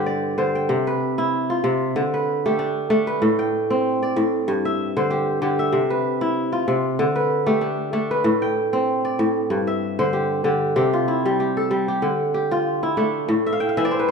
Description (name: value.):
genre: west african traditional.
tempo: 95 BPM.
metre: 4/4.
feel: swing 55% on 16ths.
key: C major.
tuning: A4 = 438 Hz.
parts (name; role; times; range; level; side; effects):
kora; solo; 0.0-14.1 s; G2 to G5; -19 LUFS; equal; none.
room: moderate recital hall reverb, RT60 1.6 s.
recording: recorded in a church or concert hall.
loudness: -19 LUFS.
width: side -5 dB against mid.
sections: 0.7-10.8 A section; 10.8-14.1 B section.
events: kora fill 13.4-14.1.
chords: 0.0 G; 0.7 C; 2.0 D5; 3.2 Am; 4.5 G5; 5.7 C; 7.0 D5; 8.2 Am; 9.5 G5; 10.8 C; 12.0 Dm; 13.3 A5.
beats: 0.07 | 0.70 1.33 1.96 2.59 | 3.22 3.84 4.47 5.10 | 5.73 6.36 6.99 7.61 | 8.24 8.87 9.50 10.13 | 10.76 11.39 12.02 12.65 | 13.28 13.91.